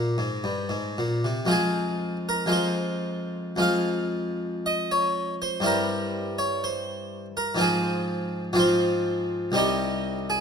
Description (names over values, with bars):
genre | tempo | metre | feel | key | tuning
classical, baroque-style suite movement for harpsichord | 54-62 BPM | 4/4 | rubato | F minor | A4 = 443 Hz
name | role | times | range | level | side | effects
harpsichord | solo | 0.0-10.4 s | C2 to F5 | -23 LUFS | equal | none
room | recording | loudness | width
moderate scoring stage reverb, RT60 1.8 s | close, detailed microphones | -23 LUFS | side -6 dB against mid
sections
0.0-1.5 A section; 1.5-10.4 B section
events
none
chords
0.0 C5; 1.5 Fm; 5.6 C/G; 7.6 Fm/Ab; 9.6 Cm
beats
0.44 | 1.51 2.53 3.62 4.65 | 5.65 6.62 7.60 8.58 | 9.55